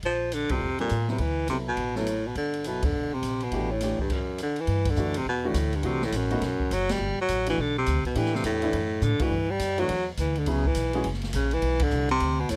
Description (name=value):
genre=jazz, small-group swing and bop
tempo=207 BPM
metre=4/4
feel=swing 63% on 8ths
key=G major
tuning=A4 = 440 Hz
part: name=upright bass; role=bass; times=0.0-12.6 s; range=E1 to A2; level=-32 LUFS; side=equal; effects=none
part: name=open jazz drum kit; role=drums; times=0.0-12.6 s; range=crash cymbal, hi-hat, kick drum, ride cymbal, snare drum, toms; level=-36 LUFS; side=equal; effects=none
part: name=breathy baritone saxophone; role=melody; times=0.1-12.6 s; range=F#2 to G3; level=-29 LUFS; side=equal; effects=none
part: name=warm grand piano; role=accompaniment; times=0.5-11.0 s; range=E3 to B4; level=-34 LUFS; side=equal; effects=none
room=little or no reverb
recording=none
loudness=-27 LUFS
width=mono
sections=0.0-4.7 A section; 4.7-12.6 B section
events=band accent 0.5, 2.8, 4.8, 6.9, 9.2, 11.8; stop 4.1-4.7; drum fill 9.0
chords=0.0 Bbsus2; 1.2 D13; 2.4 Gmaj7; 2.9 C9/E; 3.5 A5; 4.1 N.C.; 4.7 G5; 5.8 F#m7b5; 6.4 B5; 7.0 Em7 (rootless); 8.2 A5; 8.7 D; 9.3 G5; 10.5 C#m7; 11.1 F#; 11.6 Bm